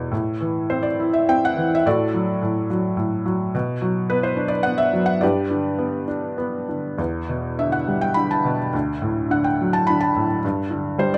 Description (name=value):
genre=classical, lyrical solo piano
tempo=105 BPM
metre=3/4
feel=rubato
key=A dorian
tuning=A4 = 440 Hz
part: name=felt-muted upright piano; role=solo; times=0.0-11.2 s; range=D2 to B5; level=-22 LUFS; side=equal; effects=none
room=light reverb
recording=none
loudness=-22 LUFS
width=mono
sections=0.1-11.2 A section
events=none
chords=0.1 Am; 1.9 D/A; 3.5 Bm; 5.2 G; 7.0 Em7; 8.7 D; 10.4 G5